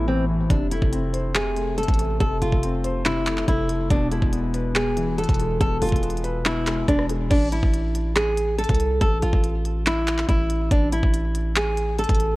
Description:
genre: hip hop, trap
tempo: 141 BPM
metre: 4/4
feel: half-time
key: A harmonic minor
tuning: A4 = 440 Hz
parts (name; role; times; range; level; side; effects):
- nylon-string guitar; melody; 0.0-12.4 s; C4 to A4; -25 LUFS; equal; low-pass filter, ping-pong delay
- felt-muted upright piano; accompaniment; 0.0-7.3 s; A2 to C5; -28 LUFS; left 3 dB; low-pass filter
- distorted 808-style bass; bass; 0.0-12.4 s; E1 to C2; -25 LUFS; equal; distortion
- trap drum kit; drums; 0.5-12.3 s; crash cymbal, handclaps, hi-hat, kick drum, rim click; -23 LUFS; equal; none
room: digital ambience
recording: worn, warbling old tape, cassette tape, warbly pitch drift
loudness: -20 LUFS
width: side -19 dB against mid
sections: 0.0-7.3 A section; 7.3-12.4 B section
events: none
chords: 0.0 Amadd9; 0.5 F; 3.9 E; 7.3 A5

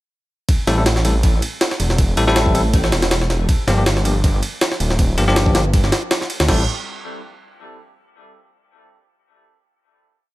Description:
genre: drum and bass, jungle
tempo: 160 BPM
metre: 4/4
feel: swing 54% on 16ths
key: A phrygian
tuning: A4 = 442 Hz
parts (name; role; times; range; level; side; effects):
- jungle sampler-style drum kit; drums; 0.5-6.6 s; crash cymbal, kick drum, ride cymbal, snare drum; -18 LUFS; equal; overdrive, studio reverb
- bell-like tine electric piano; stabs; 0.7-6.6 s; F3 to A4; -22 LUFS; left 2 dB; dub echo
- detuned saw bass; bass; 0.7-6.7 s; D1 to D2; -18 LUFS; equal; none
room: little or no reverb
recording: none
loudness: -15 LUFS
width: side -18 dB against mid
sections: 0.5-6.5 drop; 6.5-8.0 final chord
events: drop 0.5-6.5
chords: 0.5 Am7; 3.5 Gm7; 6.5 N.C.

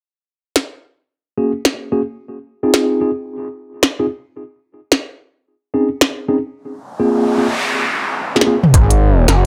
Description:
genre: glitch hop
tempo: 110 BPM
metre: 4/4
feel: swing 61% on 16ths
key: unclear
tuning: A4 = 439 Hz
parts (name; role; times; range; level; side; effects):
- glitchy drum kit; drums; 0.6-9.4 s; hi-hat, snare drum, toms; -16 LUFS; equal; small room ambience
- mellow tine electric piano; stabs; 1.4-8.6 s; Bb3 to Ab4; -20 LUFS; equal; vintage 12-bit sampler grit, sidechain pumping, low-pass filter, tape echo
- noise sweep; sound effects; 6.9-8.7 s; none; -23 LUFS; equal; none
- gritty driven synth bass; bass; 8.7-9.5 s; Gb1 to Ab1; -13 LUFS; equal; tube saturation
- electronic kick drum; drums; 8.7-8.9 s; none; -14 LUFS; equal; small room ambience
room: light reverb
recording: none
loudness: -16 LUFS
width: mono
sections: 0.0-8.7 A section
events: noise sweep 6.9-8.7; drum fill 8.3-8.7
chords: 0.0 Ab9sus4; 2.2 Fm7; 4.4 Cm; 6.6 Fmadd11/Bb; 8.7 Ab7(no3)

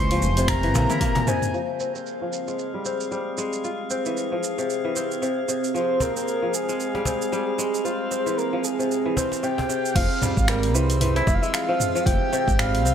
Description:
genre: organic downtempo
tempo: 114 BPM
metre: 4/4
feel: swing 58% on 16ths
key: F harmonic minor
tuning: A4 = 440 Hz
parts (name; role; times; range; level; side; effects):
- breathy flute-like synth lead; melody; 0.0-1.5, 5.8-12.9 s; Ab4 to C6; -27 LUFS; right 1 dB; lush chorus, cassette tape, digital delay
- warbly tape-like pad; sustained chords; 0.0-12.9 s; Db3 to Ab5; -31 LUFS; right 3 dB; chorus, built-in reverb, sidechain pumping
- kora; arpeggios; 0.0-12.9 s; C3 to F4; -26 LUFS; left 3 dB; low-pass filter, digital delay
- woody fretless electric bass; bass; 0.0-0.9, 10.0-12.9 s; F1 to Db2; -23 LUFS; equal; none
- drifting glass-harmonics texture; texture; 0.0-12.9 s; E3 to G6; -36 LUFS; equal; chorus, built-in reverb
- deep house drum kit; drums; 0.1-12.9 s; crash cymbal, finger snaps, hi-hat, shaker, toms; -28 LUFS; right 2 dB; low-pass filter on hats, low-pass filter on perc, low-pass filter on toms, low-pass filter on snare, low-pass filter on cymbals, low-pass filter on room
- cajon; percussion; 0.2-1.2, 6.0-11.4 s; none; -30 LUFS; left 1 dB; none
- electronic kick drum; drums; 0.5-1.1, 10.0-12.6 s; none; -24 LUFS; equal; none
room: light reverb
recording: none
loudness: -21 LUFS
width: side -8 dB against mid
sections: 0.0-1.5 A section; 1.5-10.0 B section; 10.0-12.9 C section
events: drum fill 0.7-1.5; filter sweep on kora 1.5-10.0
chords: 0.0 Bbm7; 1.5 Fm

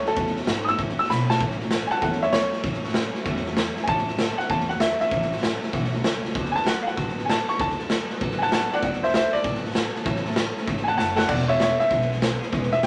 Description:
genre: rockabilly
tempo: 194 BPM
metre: 4/4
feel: swing 64% on 8ths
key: A major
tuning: A4 = 440 Hz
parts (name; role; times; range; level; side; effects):
- warm upright piano; melody; 0.0-12.9 s; A4 to E6; -26 LUFS; equal; none
- picked steel-string acoustic guitar; accompaniment; 0.0-12.9 s; A2 to A4; -34 LUFS; equal; none
- upright bass; bass; 0.0-12.9 s; E1 to B2; -34 LUFS; equal; none
- raw garage drum kit; drums; 0.1-12.9 s; crash cymbal, hi-hat, kick drum, snare drum; -28 LUFS; equal; none
room: wet studio ambience, RT60 0.5 s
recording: none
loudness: -24 LUFS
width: mono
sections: 0.0-1.4 A section; 1.4-12.9 B section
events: drum fill 1.1-1.4, 11.0-11.3; upright piano solo 1.4-12.9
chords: 0.0 A6; 6.4 D6; 10.1 A6; 11.3 E6

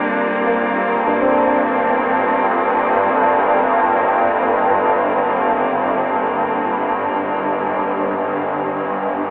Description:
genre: ambient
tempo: free time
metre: none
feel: none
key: G minor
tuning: A4 = 440 Hz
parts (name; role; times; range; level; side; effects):
- rich symphonic cello section; sustained chords; 0.0-9.3 s; G3 to C4; -21 LUFS; equal; shimmer reverb
- warm grand piano; arpeggios; 0.0-9.3 s; F2 to D4; -22 LUFS; equal; tape echo, shimmer reverb
- swarming drone; drone; 0.0-9.3 s; G1 to G2; -16 LUFS; equal; built-in reverb
room: wet cathedral reverb, RT60 5.0 s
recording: telephone sound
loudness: -14 LUFS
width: side -31 dB against mid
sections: 0.0-9.3 A section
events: fade-out on cello section 0.0-9.3; fade-out on grand piano 0.0-9.3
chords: 0.0 Gm

